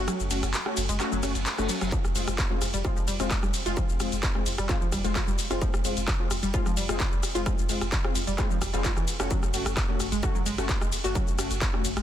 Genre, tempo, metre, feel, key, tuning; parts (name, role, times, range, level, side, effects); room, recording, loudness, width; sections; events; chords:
driving peak-time techno; 130 BPM; 4/4; straight; A4 = 440 Hz
rave stab; stabs; 0.0-11.9 s; Ab3 to Gb4; -32 LUFS; left 3 dB; chorus, built-in reverb, sidechain pumping, dub echo
saturated sub bass; bass; 0.0-12.0 s; F1 to Gb1; -33 LUFS; equal; tube saturation, sidechain pumping, low-pass filter
analog pluck; riff; 0.1-12.0 s; E3 to Gb4; -34 LUFS; equal; chorus, overdrive, sidechain pumping, dub echo
techno drum kit; drums; 0.1-12.0 s; handclaps, hi-hat, ride cymbal, rim click, shaker; -31 LUFS; equal; sidechain pumping on perc, sidechain pumping on hats, sidechain pumping on cymbals
reverse cymbal; sound effects; 1.2-1.9 s; -40 LUFS; right 2 dB
electronic kick drum; drums; 1.9-11.7 s; -28 LUFS; equal; distortion
little or no reverb; dense, heavily limited modern master; -24 LUFS; side -11 dB against mid
0.0-12.0 A section
break 0.1-1.9; reverse cymbal 1.2-1.9
0.0 Gbm; 1.9 Fm; 9.3 Gbm